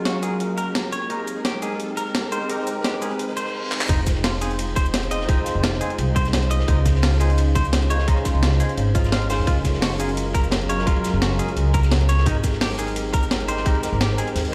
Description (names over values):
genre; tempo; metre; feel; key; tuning
liquid drum and bass; 172 BPM; 4/4; swing 53% on 16ths; F minor; A4 = 437 Hz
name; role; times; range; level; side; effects
bright tine electric piano; accompaniment; 0.0-14.5 s; Gb3 to C6; -30 LUFS; equal; ensemble chorus, digital delay
glassy FM pad; sustained chords; 0.0-14.5 s; Gb3 to Bb5; -36 LUFS; equal; none
riser and reverse cymbal; sound effects; 0.0-3.9 s; none; -37 LUFS; equal; none
clean electric guitar; arpeggios; 0.1-14.3 s; Eb4 to F5; -32 LUFS; equal; low-pass filter, digital delay
breakbeat sampler-style drum kit; drums; 0.1-14.5 s; crash cymbal, handclaps, hi-hat, shaker, snare drum; -29 LUFS; equal; overdrive
upright bass; bass; 3.9-14.5 s; F1 to F2; -24 LUFS; equal; none
crunchy breakbeat drum kit; drums; 3.9-14.5 s; hi-hat, ride cymbal, snare drum; -35 LUFS; equal; high-pass filter on cymbals, high-pass filter on hats, high-pass filter on snare, high-pass filter on room
electronic kick drum; drums; 3.9-13.7 s; none; -23 LUFS; equal; overdrive
room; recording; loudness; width
light reverb, studio reverb; played on a big sound system in a bare room, stone room reverb; -21 LUFS; mono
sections
0.0-3.9 A section; 3.9-14.5 B section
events
build-up 0.0-3.9; reverse cymbal 3.2-3.9; drum fill 3.7; drop 3.9-14.5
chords
0.0 Gbmaj9; 1.1 Abmaj9; 3.9 Fm7; 6.7 Dbmaj9; 9.5 Gbmaj9; 12.3 Abmaj9